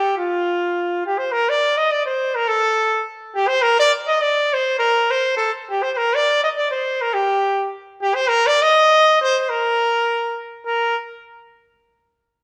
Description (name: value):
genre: alpine folk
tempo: 103 BPM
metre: 2/4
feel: swing 55% on 8ths, rubato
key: Bb major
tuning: A4 = 440 Hz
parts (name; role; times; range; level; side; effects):
- clear trumpet; solo; 0.0-11.0 s; F4 to Eb5; -19 LUFS; equal; none
room: moderate recital hall reverb, RT60 1.5 s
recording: none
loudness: -19 LUFS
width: mono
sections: 0.0-1.3 A section; 1.3-10.7 B section; 10.7-11.8 C section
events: none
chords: none